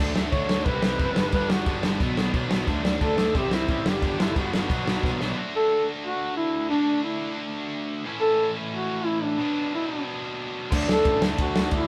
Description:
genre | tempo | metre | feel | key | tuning
punk rock | 179 BPM | 4/4 | straight | D major | A4 = 440 Hz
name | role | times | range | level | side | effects
distorted electric guitar | riff | 0.0-11.9 s | G2 to F#4 | -33 LUFS | equal | overdrive
overdriven electric guitar | riff | 0.0-5.4, 10.7-11.9 s | G2 to D4 | -33 LUFS | equal | none
fuzz picked electric bass | bass | 0.0-5.3, 10.7-11.8 s | F#1 to D2 | -33 LUFS | equal | overdrive
loose indie drum kit | drums | 0.2-5.3, 10.7-11.8 s | crash cymbal, kick drum, ride cymbal, snare drum | -28 LUFS | equal | none
mellow duduk | melody | 0.3-11.9 s | D4 to C#5 | -28 LUFS | equal | none
room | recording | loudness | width
moderate studio reverb, RT60 0.5 s | band playing live in one room | -25 LUFS | mono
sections
0.0-5.4 A section; 5.4-11.9 B section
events
drum fill 5.0-5.4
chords
0.0 D; 0.7 C; 1.2 G; 2.0 Bm; 2.7 D; 3.4 C; 3.9 G; 4.7 Bm; 5.4 D; 8.0 A; 9.4 Bm; 10.7 D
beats
0.32 0.66 0.99 | 1.33 1.67 2.01 2.34 | 2.68 3.02 3.35 3.69 | 4.03 4.36 4.70 5.03 | 5.37 5.70 6.04 6.37 | 6.71 7.04 7.38 7.71 | 8.04 8.38 8.71 9.05 | 9.38 9.72 10.05 10.38 | 10.72 11.05 11.39 11.72

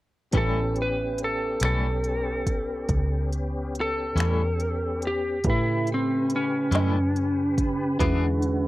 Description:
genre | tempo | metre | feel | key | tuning
slow blues | 47 BPM (dotted quarters) | 12/8 | straight | A mixolydian | A4 = 445 Hz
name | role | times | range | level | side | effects
twangy electric guitar | accompaniment | 0.3-8.3 s | A2 to G#4 | -30 LUFS | left 3 dB | tremolo
warm upright piano | accompaniment | 0.3-8.7 s | A3 to B4 | -34 LUFS | right 5 dB | none
tonewheel organ | sustained chords | 0.3-8.7 s | C#3 to B4 | -33 LUFS | left 2 dB | slow rotary speaker, chorus vibrato
vintage muted fingered electric bass | bass | 0.3-8.7 s | A1 to A2 | -27 LUFS | equal | none
organic electronic drum kit | drums | 0.3-8.6 s | finger snaps, hi-hat, kick drum, snare drum | -28 LUFS | equal | overdrive
lightly driven lead guitar | melody | 0.4-8.7 s | C4 to B4 | -26 LUFS | equal | none
room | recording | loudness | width
little or no reverb | dry, close 1970s-style studio recording | -23 LUFS | side -17 dB against mid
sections
0.3-8.7 A section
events
none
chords
0.3 A7; 8.0 E7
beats
| 0.33 1.61 2.89 4.17 | 5.45 6.72 8.00

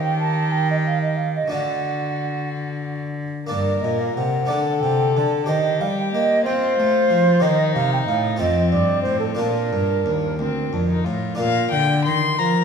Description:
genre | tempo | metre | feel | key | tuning
classical, baroque-style sonata movement with continuo | 61 BPM (dotted quarters) | 6/8 | straight | Bb major from 7.4 s | A4 = 440 Hz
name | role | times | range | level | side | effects
warm violin | melody | 0.0-12.6 s | C4 to C6 | -26 LUFS | left 6 dB | none
bright baroque flute | second line | 0.0-12.6 s | A4 to A5 | -22 LUFS | right 3 dB | none
harpsichord | accompaniment | 0.0-12.6 s | D2 to D5 | -27 LUFS | left 1 dB | none
rich cello | bass | 0.0-12.6 s | D2 to C4 | -23 LUFS | equal | none
room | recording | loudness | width
wet recital hall reverb, RT60 1.6 s | heard from further back in the room | -18 LUFS | side -6 dB against mid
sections
0.0-11.4 A section; 11.4-12.6 B section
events
none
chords
0.0 Eb7; 1.5 D; 3.5 Gm; 4.5 D5; 5.5 Cm/Eb; 7.4 Eb; 8.4 F; 9.4 Bb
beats
0.52 | 1.52 2.52 | 3.51 4.50 | 5.48 6.46 | 7.43 8.40 | 9.39 10.39 | 11.40 12.39

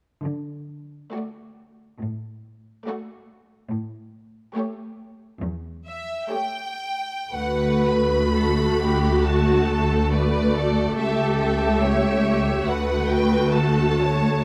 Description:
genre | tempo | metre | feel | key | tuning
classical, slow romantic movement for string orchestra | 67 BPM | 4/4 | uneven beats, rubato | D major | A4 = 441 Hz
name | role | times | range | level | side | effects
rich studio cello section | bass | 0.2-14.4 s | C#2 to D3 | -28 LUFS | equal | none
bright studio violin section | melody | 1.1-14.4 s | C#5 to B5 | -31 LUFS | equal | none
warm studio violin section | second line | 1.1-14.4 s | F#4 to C#5 | -29 LUFS | equal | none
rich studio viola section | accompaniment | 1.1-14.4 s | A3 to G4 | -26 LUFS | equal | none
rich studio double bass section | bass | 7.3-14.4 s | C#2 to D2 | -27 LUFS | equal | none
room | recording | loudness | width
light reverb | close, detailed microphones | -22 LUFS | mono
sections
0.3-7.3 A section; 7.3-14.4 B section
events
none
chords
0.3 D; 3.7 A7; 7.3 D; 11.0 A7/C#; 12.7 D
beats
| 0.25 1.14 2.02 2.87 | 3.72 4.57 5.43 6.31 | 7.33 8.34 9.24 10.11 | 10.96 11.82 12.66 13.54

